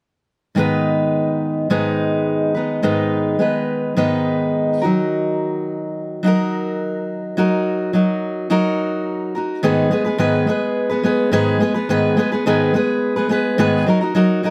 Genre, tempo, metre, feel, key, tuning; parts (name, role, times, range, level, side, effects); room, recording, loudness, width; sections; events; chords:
pop; 106 BPM; 4/4; straight; A4 = 440 Hz
fingerpicked steel-string acoustic guitar; accompaniment; 0.5-14.5 s; Ab2 to Cb5; -19 LUFS; equal
light reverb; -19 LUFS; mono
0.6-9.6 A section; 9.6-14.5 B section
0.6 Abm; 4.8 Ebm; 9.6 Abm; 13.9 Ebm/Gb